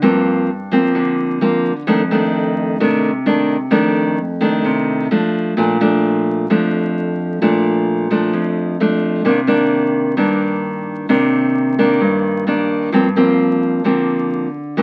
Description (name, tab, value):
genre	bossa nova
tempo	130 BPM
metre	4/4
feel	straight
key	Bb major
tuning	A4 = 440 Hz
part	nylon-string guitar	solo	0.0-14.8 s	F2 to D4	-16 LUFS	equal	none
room	moderate studio ambience, RT60 0.5 s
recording	very old 78 rpm record, vinyl crackle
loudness	-16 LUFS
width	mono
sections	0.0-5.6 A section; 5.6-14.8 B section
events	none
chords	0.0 Gm7; 1.9 F6; 5.6 Bbmaj7; 9.2 Cm9; 12.9 Gm7